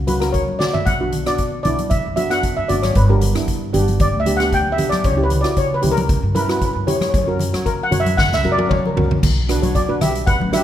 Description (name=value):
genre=calypso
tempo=115 BPM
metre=4/4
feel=swing 54% on 16ths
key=unclear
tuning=A4 = 438 Hz
part: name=upright bass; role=bass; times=0.0-10.6 s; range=G1 to F#3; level=-21 LUFS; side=equal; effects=none
part: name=steel pan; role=melody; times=0.1-10.6 s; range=F#4 to G5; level=-21 LUFS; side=left 1 dB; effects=none
part: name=steel pan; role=accompaniment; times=0.1-10.6 s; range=A#3 to C#5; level=-23 LUFS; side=right 1 dB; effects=none
part: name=street-band drum kit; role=drums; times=0.1-10.6 s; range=crash cymbal, hi-hat, kick drum, rim click, snare drum, toms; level=-22 LUFS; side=equal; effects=none
part: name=congas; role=percussion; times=0.1-10.6 s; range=none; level=-24 LUFS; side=left 1 dB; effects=none
room=moderate concert hall reverb, RT60 1.9 s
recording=minimal, uncompressed stereo recording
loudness=-15 LUFS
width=side -11 dB against mid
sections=0.0-9.2 A section; 9.2-10.6 B section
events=steel pan solo 0.0-9.2; drum fill 0.5-0.9, 8.2-9.2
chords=0.0 F#; 0.9 Bm; 3.0 G; 5.1 C#dim; 7.1 F#; 9.2 Bm